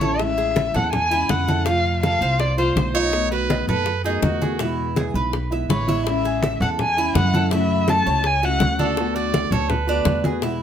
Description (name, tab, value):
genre	latin, Cuban son and guajira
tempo	164 BPM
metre	4/4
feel	straight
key	A major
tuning	A4 = 439 Hz
part	dark erhu	melody	0.0-2.9, 5.7-8.8 s	C5 to A5	-22 LUFS	left 2 dB	plate reverb
part	nylon-string guitar	accompaniment	0.0-10.6 s	B2 to F#4	-26 LUFS	left 2 dB	none
part	Cuban tres	arpeggios	0.0-10.6 s	D4 to F5	-27 LUFS	right 4 dB	none
part	upright bass	bass	0.0-10.6 s	A1 to F#2	-24 LUFS	right 1 dB	none
part	bongos	percussion	0.0-10.6 s	none	-28 LUFS	left 6 dB	none
part	congas	percussion	0.0-10.6 s	none	-25 LUFS	left 1 dB	none
part	bright trumpet	second line	2.9-4.9, 8.8-10.4 s	F#4 to D5	-26 LUFS	right 7 dB	none
room	moderate studio reverb, RT60 0.7 s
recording	none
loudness	-18 LUFS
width	side -9 dB against mid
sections	0.2-10.6 A section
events	none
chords	0.2 Amaj7; 1.7 Fmaj7; 3.1 B7; 4.6 E; 6.1 Amaj7; 7.5 F#m7; 9.0 D6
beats	| 0.19 0.56 0.93 1.29 | 1.66 2.03 2.40 2.76 | 3.13 3.50 3.86 4.23 | 4.60 4.96 5.33 5.69 | 6.06 6.42 6.79 7.15 | 7.52 7.88 8.25 8.61 | 8.97 9.34 9.70 10.06 | 10.43